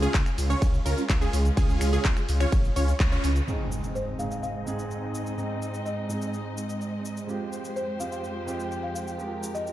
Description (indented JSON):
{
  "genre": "EDM, festival progressive house",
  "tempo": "126 BPM",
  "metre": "4/4",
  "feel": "straight",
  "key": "unclear",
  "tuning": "A4 = 440 Hz",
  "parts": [
    { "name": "dark symphonic string section", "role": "sustained chords", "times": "0.0-9.7 s", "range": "F2 to Eb5", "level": "-35 LUFS", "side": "left 1 dB", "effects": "sidechain pumping, low-pass filter" },
    { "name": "wide unison pluck", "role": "arpeggios", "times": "0.0-3.3 s", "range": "Ab4 to Db5", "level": "-34 LUFS", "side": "equal", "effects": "sidechain pumping, dub echo" },
    { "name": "big supersaw lead", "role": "riff", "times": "0.0-3.3 s", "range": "Db4 to Db5", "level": "-32 LUFS", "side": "right 2 dB", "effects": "phaser, sidechain pumping, low-pass filter, dub echo" },
    { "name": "wide detuned saw bass", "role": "bass", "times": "0.0-3.4 s", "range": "Ab1 to Db2", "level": "-25 LUFS", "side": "equal", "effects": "chorus, sidechain pumping" },
    { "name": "big-room dance drum kit", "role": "drums", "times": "0.0-9.7 s", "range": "finger snaps, handclaps, hi-hat, ride cymbal, shaker", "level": "-35 LUFS", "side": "equal", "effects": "overdrive, studio ambience" },
    { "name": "electronic kick drum", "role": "drums", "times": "0.1-3.1 s", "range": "none", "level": "-24 LUFS", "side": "equal", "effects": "studio ambience" },
    { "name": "dark baby grand piano", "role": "accompaniment", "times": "3.5-9.7 s", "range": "Ab2 to Ab4", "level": "-34 LUFS", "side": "right 3 dB", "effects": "vintage 12-bit sampler grit, sidechain pumping" },
    { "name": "impact", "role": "sound effects", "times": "3.5-5.4 s", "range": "none", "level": "-35 LUFS", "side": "equal", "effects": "none" },
    { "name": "buzzing marimba with soft mallets", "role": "melody", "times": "4.0-9.7 s", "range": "C5 to F5", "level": "-35 LUFS", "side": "left 1 dB", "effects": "dub echo" }
  ],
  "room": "light reverb",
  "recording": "dark, warm production",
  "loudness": "-25 LUFS",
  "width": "side -14 dB against mid",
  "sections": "0.0-3.5 A section; 3.5-9.7 B section",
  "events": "drop 0.0-3.5; band accent 3.0; impact 3.5-5.4; filter sweep on string section 3.5-9.7",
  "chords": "0.0 Db; 3.5 Ab; 7.3 Fmadd9"
}